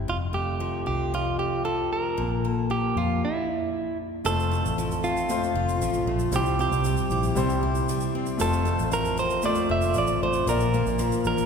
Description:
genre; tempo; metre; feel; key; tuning
acoustic pop; 116 BPM; 4/4; straight; F major; A4 = 440 Hz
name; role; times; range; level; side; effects
picked steel-string acoustic guitar; accompaniment; 0.0-11.5 s; F2 to G4; -30 LUFS; left 4 dB; none
vintage muted fingered electric bass; bass; 0.0-11.5 s; F1 to F2; -28 LUFS; equal; none
direct-recorded clean electric guitar; melody; 0.1-11.5 s; E4 to E5; -27 LUFS; right 3 dB; none
clear concert grand piano; accompaniment; 4.2-11.5 s; G3 to D5; -30 LUFS; left 3 dB; none
tube shaker; percussion; 4.3-11.5 s; none; -40 LUFS; right 9 dB; none
room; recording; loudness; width
wet church reverb, RT60 3.0 s; recorded in a church or concert hall; -23 LUFS; side -6 dB against mid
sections
0.0-4.3 A section; 4.3-11.5 B section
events
stop 3.2-4.3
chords
0.1 F; 2.2 Bb5; 3.2 N.C.; 4.3 F; 6.3 C; 8.4 F; 10.5 Bb

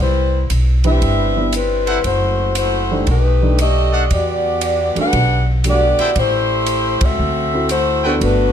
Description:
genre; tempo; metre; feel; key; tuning
jazz, big band swing; 117 BPM; 4/4; swing 67% on 8ths; unclear; A4 = 441 Hz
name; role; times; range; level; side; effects
clear saxophone section; melody; 0.0-8.5 s; G3 to F#5; -17 LUFS; left 2 dB; plate reverb
upright bass; bass; 0.0-8.5 s; F#1 to E2; -18 LUFS; equal; none
swinging big-band drum kit; drums; 0.5-8.4 s; hi-hat, kick drum, ride cymbal; -25 LUFS; right 1 dB; none
dark grand piano; accompaniment; 0.8-8.5 s; G3 to B4; -21 LUFS; right 2 dB; none
bright trumpet section; stabs; 1.9-8.2 s; D4 to G5; -22 LUFS; right 1 dB; none
room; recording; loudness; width
light reverb; dark, warm production; -14 LUFS; side -9 dB against mid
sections
0.0-8.5 A section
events
band accent 6.9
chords
0.0 Cmaj7; 2.0 F#m7b5; 3.1 B7alt; 4.1 Em11; 6.2 Am7; 7.2 D9

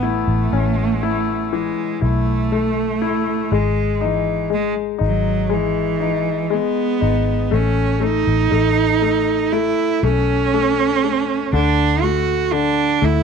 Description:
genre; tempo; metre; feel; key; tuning
pop ballad; 60 BPM; 4/4; straight; unclear; A4 = 440 Hz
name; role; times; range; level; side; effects
warm cello; melody; 0.0-13.2 s; E3 to F#4; -20 LUFS; right 9 dB; slapback echo
bright concert grand piano; accompaniment; 0.0-13.2 s; D3 to E4; -21 LUFS; left 14 dB; none
vintage muted fingered electric bass; bass; 0.0-13.2 s; G#1 to D2; -21 LUFS; left 1 dB; none
room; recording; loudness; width
studio ambience; 1960s-style stereo with parts hard left and right; -16 LUFS; side -6 dB against mid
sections
0.0-13.2 A section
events
none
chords
0.0 Aadd9; 3.5 Emaj7/G#; 7.5 Aadd9; 11.5 D

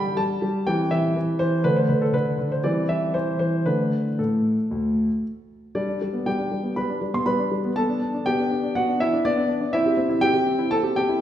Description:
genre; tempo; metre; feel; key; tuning
classical-period piano sonatina; 120 BPM; 4/4; rubato; G major; A4 = 440 Hz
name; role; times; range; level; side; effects
warm concert grand piano; solo; 0.0-11.2 s; D2 to C6; -20 LUFS; equal; none
room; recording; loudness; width
wet recital hall reverb, RT60 1.8 s; heard from further back in the room; -20 LUFS; side -11 dB against mid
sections
0.0-5.8 A section; 5.8-11.2 B section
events
none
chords
0.0 G5; 0.7 C/E; 1.6 D5; 2.6 C/E; 3.7 D5; 5.8 G; 7.8 G/B; 9.7 C

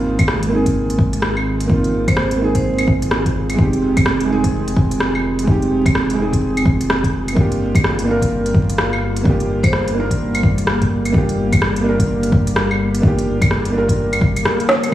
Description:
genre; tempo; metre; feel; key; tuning
future garage; 127 BPM; 4/4; swing 62% on 16ths; G phrygian; A4 = 440 Hz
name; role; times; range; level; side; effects
felt-muted upright piano; accompaniment; 0.0-14.9 s; Ab3 to Bb4; -20 LUFS; right 2 dB; sidechain pumping, analog delay
warbly tape-like pad; sustained chords; 0.3-14.9 s; D3 to G4; -22 LUFS; equal; chorus, built-in reverb, sidechain pumping
soft dub sub bass; bass; 0.0-14.9 s; F1 to Ab1; -23 LUFS; equal; sidechain pumping
electronic kick drum; drums; 0.2-14.3 s; none; -17 LUFS; equal; overdrive
organic electronic drum kit; drums; 0.2-14.9 s; claves, hi-hat, rim click, snare drum; -21 LUFS; equal; none
vibraphone with hard mallets; melody; 2.1-2.9, 9.6-9.9 s; C5; -29 LUFS; right 1 dB; analog delay
room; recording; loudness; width
moderate lush hall reverb, RT60 2.1 s; played on a big sound system in a bare room, large studio reverb, vinyl crackle, small room ambience; -14 LUFS; side -13 dB against mid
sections
0.0-14.9 A section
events
drum fill 14.7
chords
0.0 Ab6; 3.6 Fm7; 7.4 Gm7

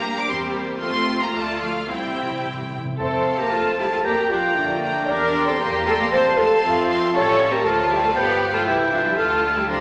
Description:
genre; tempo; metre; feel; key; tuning
quick classical-period movement for symphony orchestra; 107-120 BPM; 2/4; rubato; F major; A4 = 440 Hz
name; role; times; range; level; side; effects
warm studio violin section; melody; 0.0-9.8 s; E5 to D6; -31 LUFS; equal; none
rich studio violin section; second line; 0.0-9.8 s; F4 to Bb5; -35 LUFS; equal; none
rich studio viola section; accompaniment; 0.0-9.8 s; G3 to Bb4; -28 LUFS; equal; none
warm French horn section; sustained chords; 0.0-9.8 s; G3 to D5; -26 LUFS; equal; none
rich studio cello section; bass; 0.0-9.8 s; D3 to D4; -33 LUFS; equal; none
rich studio double bass section; bass; 0.0-9.8 s; G1 to F2; -39 LUFS; equal; none
timpani; percussion; 1.9-3.8 s; F2 to C3; -35 LUFS; equal; none
bright concert flute; second line; 3.0-9.8 s; D5 to D6; -31 LUFS; equal; none
mellow oboe; second line; 3.0-9.8 s; F5 to Bb5; -26 LUFS; equal; none
mellow bassoon; accompaniment; 3.0-9.8 s; C3 to A3; -32 LUFS; equal; none
room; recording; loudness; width
wet scoring stage reverb, RT60 1.7 s; none; -21 LUFS; mono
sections
0.0-3.0 A section; 3.0-9.8 B section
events
timpani fill 1.9-3.0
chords
0.3 C7/E; 0.8 F; 1.3 Dm; 1.9 C; 3.0 F; 4.1 Gm7/F; 5.1 C7/E; 6.1 F; 7.2 A7; 7.7 Dm; 8.2 G7; 8.7 C; 9.2 Dm

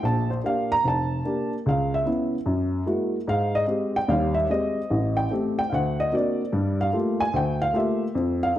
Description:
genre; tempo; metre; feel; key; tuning
solo jazz; 148 BPM; 4/4; swing 66% on 8ths; Bb major; A4 = 440 Hz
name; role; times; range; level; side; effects
dark upright piano; solo; 0.0-8.6 s; F1 to Bb5; -22 LUFS; equal; none
room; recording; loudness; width
moderate large studio reverb, RT60 1.3 s; dark, warm production; -22 LUFS; side -12 dB against mid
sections
0.0-8.6 A section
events
upright piano solo 0.0-8.6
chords
0.0 Bb6; 1.7 Dbm7; 2.5 Gb9; 3.3 Abmaj7; 4.9 Am7; 5.7 D7b13; 6.5 Gm9

